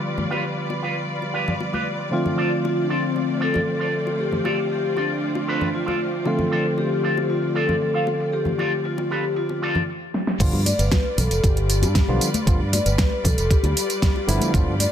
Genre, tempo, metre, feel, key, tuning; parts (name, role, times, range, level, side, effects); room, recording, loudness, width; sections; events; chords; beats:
nu-disco, nu disco; 116 BPM; 4/4; straight; G mixolydian; A4 = 441 Hz
barky tine electric piano; accompaniment; 0.0-14.7 s; D3 to F4; -26 LUFS; equal; sidechain pumping
rich studio string section; sustained chords; 0.0-14.9 s; G3 to D5; -31 LUFS; equal; sidechain pumping, low-pass filter
pop drum kit; drums; 0.1-14.9 s; crash cymbal, hi-hat, snare drum, tambourine; -26 LUFS; right 1 dB; overdrive, low-pass filter on hats, low-pass filter on perc, low-pass filter on snare, low-pass filter on cymbals, low-pass filter on room
congas and bongos; percussion; 0.2-14.9 s; -29 LUFS; left 2 dB
electric guitar with an envelope filter; riff; 0.3-9.8 s; F4 to F5; -28 LUFS; right 1 dB; wide subtle chorus
vibraphone with soft mallets; melody; 2.1-14.9 s; C4 to D5; -25 LUFS; left 2 dB; dub echo
fingered electric bass with an envelope filter; bass; 10.4-14.8 s; F1 to G2; -22 LUFS; right 1 dB
electronic kick drum; drums; 10.4-14.6 s; -20 LUFS; right 1 dB
light reverb; -19 LUFS; side -9 dB against mid
0.0-10.4 A section; 10.4-14.9 B section
filter sweep on tine electric piano 0.0-10.4; stop 9.9-10.4; drum fill 10.1; drop 10.4-14.9
0.0 G7; 2.1 F6; 10.4 G7
| 0.06 0.57 1.09 1.61 | 2.12 2.64 3.16 3.68 | 4.19 4.71 5.23 5.75 | 6.26 6.78 7.30 7.81 | 8.33 8.85 9.37 9.88 | 10.40 10.92 11.44 11.95 | 12.47 12.99 13.50 14.02 | 14.54